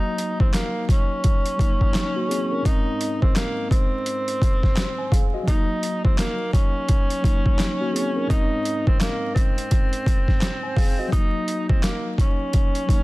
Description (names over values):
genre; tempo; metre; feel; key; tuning
hip hop, boom-bap hip-hop; 85 BPM; 4/4; swing 61% on 16ths; Eb dorian; A4 = 441 Hz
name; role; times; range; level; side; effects
breathy tenor saxophone; melody; 0.0-13.0 s; Bb3 to Eb4; -27 LUFS; equal; high-pass filter, low-pass filter, tape echo
tine electric piano; accompaniment; 0.0-13.0 s; Ab2 to Ab5; -28 LUFS; left 1 dB; medium stereo tremolo, cassette tape, high-pass filter, low-pass filter
boom bap sampler-style drum kit; drums; 0.2-13.0 s; handclaps, hi-hat, kick drum, snare drum; -20 LUFS; equal; overdrive
room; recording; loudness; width
little or no reverb; dense, heavily limited modern master, vinyl crackle; -19 LUFS; side -20 dB against mid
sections
0.0-13.0 A section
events
none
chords
0.0 Ebm; 2.7 Ab; 5.5 Ebm; 8.3 Ab; 11.1 Ebm